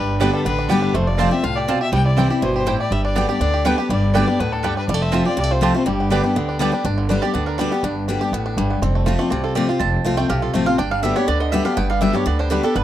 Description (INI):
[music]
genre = bluegrass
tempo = 244 BPM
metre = 4/4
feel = straight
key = G mixolydian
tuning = A4 = 441 Hz
[part]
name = bluegrass banjo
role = melody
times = 0.0-12.8 s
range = D3 to G4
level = -26 LUFS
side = right 4 dB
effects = none
[part]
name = warm fiddle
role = melody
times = 0.0-6.6 s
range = G4 to G5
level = -25 LUFS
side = left 4 dB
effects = none
[part]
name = picked steel-string acoustic guitar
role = accompaniment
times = 0.0-12.8 s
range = F2 to G4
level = -20 LUFS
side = left 2 dB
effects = none
[part]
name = upright bass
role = bass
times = 0.0-12.8 s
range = F1 to D2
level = -22 LUFS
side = right 1 dB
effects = none
[part]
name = mandolin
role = stabs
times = 0.2-12.8 s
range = B3 to A5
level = -24 LUFS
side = right 5 dB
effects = none
[sound]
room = little or no reverb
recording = dry, close 1970s-style studio recording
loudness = -17 LUFS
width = side -12 dB against mid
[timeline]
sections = 0.0-6.9 A section; 6.9-12.8 B section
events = mandolin solo 6.9-12.8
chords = 0.0 G; 0.9 F; 1.9 C; 2.9 G; 4.9 F; 5.9 G; 8.8 F; 10.8 G